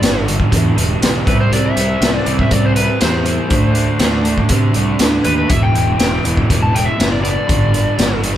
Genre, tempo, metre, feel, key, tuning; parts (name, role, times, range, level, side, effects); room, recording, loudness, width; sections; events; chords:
blues rock power trio and southern rock; 120 BPM; 4/4; straight; E minor; A4 = 440 Hz
overdriven slide guitar; melody; 0.0-8.2 s; B4 to A5; -21 LUFS; left 3 dB
raw garage guitar; riff; 0.0-8.4 s; E2 to D4; -19 LUFS; right 1 dB; overdrive
fuzz picked electric bass; bass; 0.0-8.4 s; E1 to C3; -19 LUFS; equal; overdrive
raw garage drum kit; drums; 0.0-8.4 s; hi-hat, kick drum, snare drum; -15 LUFS; equal
light reverb; band playing live in one room; -12 LUFS; side -11 dB against mid
0.0-8.4 A section
0.0 G; 1.3 C; 3.5 D5; 5.5 Em; 7.5 G5